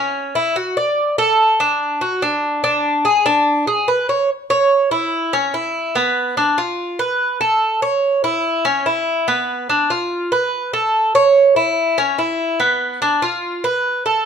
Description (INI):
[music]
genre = latin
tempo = 144 BPM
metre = 4/4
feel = straight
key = unclear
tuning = A4 = 440 Hz
[part]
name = Cuban tres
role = solo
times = 0.0-14.3 s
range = B3 to D5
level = -15 LUFS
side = right 1 dB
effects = none
[sound]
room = moderate large studio reverb, RT60 0.9 s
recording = minimal, uncompressed stereo recording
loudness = -15 LUFS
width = side -7 dB against mid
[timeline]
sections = 0.0-4.3 A section; 4.3-14.3 B section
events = none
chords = none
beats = 0.14 0.56 | 0.97 1.39 1.81 2.22 | 2.64 3.05 3.47 3.88 | 4.30 4.71 5.13 5.54 | 5.96 6.37 6.79 7.20 | 7.62 8.03 8.45 8.87 | 9.28 9.70 10.11 10.53 | 10.94 11.36 11.77 12.19 | 12.60 13.02 13.44 13.85